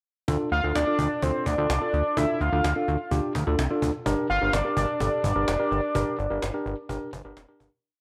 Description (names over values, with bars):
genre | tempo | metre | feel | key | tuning
synth-pop | 127 BPM | 4/4 | straight | D minor | A4 = 444 Hz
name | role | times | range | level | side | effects
tine electric piano | accompaniment | 0.3-7.7 s | D4 to Bb4 | -31 LUFS | equal | none
chorused synth bass | bass | 0.3-7.7 s | F1 to D2 | -30 LUFS | equal | none
cajon | drums | 0.3-7.7 s | none | -35 LUFS | equal | none
fat analog lead | melody | 0.5-7.3 s | C5 to F5 | -29 LUFS | equal | chorus, tape echo
room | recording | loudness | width
light reverb | none | -26 LUFS | mono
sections
0.3-7.8 verse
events
fade-out 6.0-7.8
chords
0.3 Dm; 4.1 Gm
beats
| 0.28 0.75 1.23 1.70 | 2.17 2.64 3.12 3.59 | 4.06 4.53 5.00 5.48 | 5.95 6.42 6.89 7.37